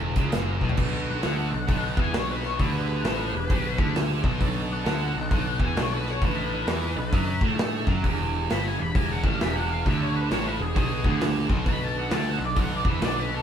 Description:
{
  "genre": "blues rock power trio and southern rock",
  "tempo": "132 BPM",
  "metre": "4/4",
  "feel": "swing 63% on 8ths",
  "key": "unclear",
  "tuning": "A4 = 440 Hz",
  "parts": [
    { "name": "overdriven tonewheel organ", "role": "sustained chords", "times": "0.0-13.3 s", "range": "A#3 to B4", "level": "-38 LUFS", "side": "right 4 dB", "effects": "slow rotary speaker, chorus vibrato" },
    { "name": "tight distorted guitar", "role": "riff", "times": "0.0-13.4 s", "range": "E2 to A3", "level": "-30 LUFS", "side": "right 2 dB", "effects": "distortion" },
    { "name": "fuzz picked electric bass", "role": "bass", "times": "0.0-13.4 s", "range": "E1 to A2", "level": "-29 LUFS", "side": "equal", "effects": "overdrive" },
    { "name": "big rock drum kit", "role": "drums", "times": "0.2-13.2 s", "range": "crash cymbal, hi-hat, kick drum, snare drum, toms", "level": "-26 LUFS", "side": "equal", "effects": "none" },
    { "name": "octave-fuzz lead guitar", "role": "melody", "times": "1.1-13.4 s", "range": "G#4 to B5", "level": "-32 LUFS", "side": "left 2 dB", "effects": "wah, distortion" }
  ],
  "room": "moderate stone room reverb, RT60 1.1 s",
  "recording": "band playing live in one room",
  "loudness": "-23 LUFS",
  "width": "side -8 dB against mid",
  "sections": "0.8-13.4 A section",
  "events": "drum fill 0.6; lead electric guitar solo 0.8-13.4",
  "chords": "0.0 F#7; 0.8 B7#9; 2.6 E7#9; 4.4 B7#9; 8.0 E7#9; 11.7 B7#9"
}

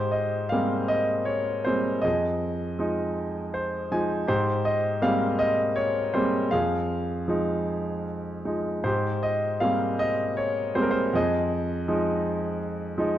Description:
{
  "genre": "classical, lyrical solo piano",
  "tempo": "53 BPM (dotted quarters)",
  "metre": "6/8",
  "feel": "rubato",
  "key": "Ab major",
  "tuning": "A4 = 440 Hz",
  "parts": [
    { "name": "clear concert grand piano", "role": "solo", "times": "0.0-13.2 s", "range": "F2 to Ab5", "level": "-24 LUFS", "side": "equal", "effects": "none" }
  ],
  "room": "light reverb",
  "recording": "dark, warm production",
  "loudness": "-24 LUFS",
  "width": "side -12 dB against mid",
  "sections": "0.0-13.2 A section",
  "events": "grand piano fill 3.2-4.3",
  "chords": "0.0 Abmaj9; 2.1 Fm7; 4.3 Abmaj9; 6.5 Fm7; 8.8 Abmaj9; 11.1 Fm7"
}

